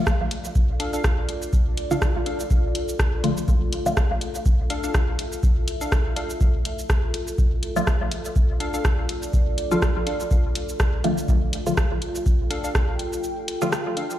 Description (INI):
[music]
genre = dub techno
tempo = 123 BPM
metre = 4/4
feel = swing 56% on 16ths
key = D minor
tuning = A4 = 440 Hz
[part]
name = deep dark ambient pad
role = sustained chords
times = 0.3-14.2 s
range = F4 to G5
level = -31 LUFS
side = equal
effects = chorus, built-in reverb, sidechain pumping
[part]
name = filtered dub chord stab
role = stabs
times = 0.0-3.9, 7.8-13.7 s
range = D3 to F4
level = -26 LUFS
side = equal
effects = phaser, sidechain pumping, dub echo
[part]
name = deep house drum kit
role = drums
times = 0.1-14.2 s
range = cabasa, hi-hat, rim click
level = -30 LUFS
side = equal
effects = dub echo
[part]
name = electronic kick drum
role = drums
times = 0.1-12.9 s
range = none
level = -22 LUFS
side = equal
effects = none
[part]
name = wavetable chord stab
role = riff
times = 0.8-14.1 s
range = D4 to F5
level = -32 LUFS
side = left 2 dB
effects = vintage 12-bit sampler grit, sidechain pumping, dub echo
[sound]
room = light reverb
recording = played on a big sound system in a bare room, large studio reverb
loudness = -20 LUFS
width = side -12 dB against mid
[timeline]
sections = 0.0-14.2 A section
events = break 13.2-14.2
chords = 0.0 Dm